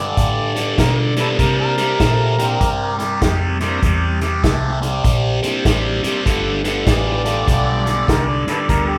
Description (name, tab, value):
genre	electric blues shuffle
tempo	99 BPM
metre	4/4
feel	swing 63% on 8ths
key	unclear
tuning	A4 = 440 Hz
part	overdriven harmonica	second line	0.0-9.0 s	G4 to D5	-26 LUFS	equal	tape echo
part	overdriven electric guitar	riff	0.0-9.0 s	G2 to A3	-22 LUFS	equal	phaser
part	vintage muted fingered electric bass	bass	0.0-9.0 s	G1 to C3	-23 LUFS	equal	none
part	natural country drum kit	drums	0.2-8.9 s	hi-hat, kick drum, snare drum	-22 LUFS	equal	none
part	bright tonewheel organ	accompaniment	1.2-8.0 s	A3 to A5	-30 LUFS	equal	slow rotary speaker, overdrive
room	moderate large studio reverb, RT60 0.8 s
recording	band playing live in one room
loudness	-17 LUFS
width	mono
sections	0.0-9.0 A section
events	harmonica solo 0.0-9.0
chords	0.0 Gadd9; 1.4 C9; 6.3 G9